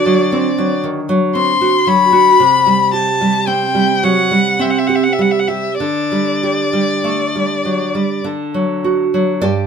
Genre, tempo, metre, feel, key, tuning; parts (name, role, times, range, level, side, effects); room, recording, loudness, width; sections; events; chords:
romantic duo for violin and classical guitar; 48-58 BPM; 3/4; rubato; A4 = 442 Hz
rich violin; melody; 0.0-8.2 s; D5 to C6; -15 LUFS; left 5 dB
nylon-string guitar; accompaniment; 0.0-9.7 s; G2 to D5; -15 LUFS; right 2 dB
light reverb; minimal, uncompressed stereo recording; -12 LUFS; side -6 dB against mid
0.0-9.4 A section
0.0 D7; 2.4 C(#11); 5.8 Dsus4; 8.2 D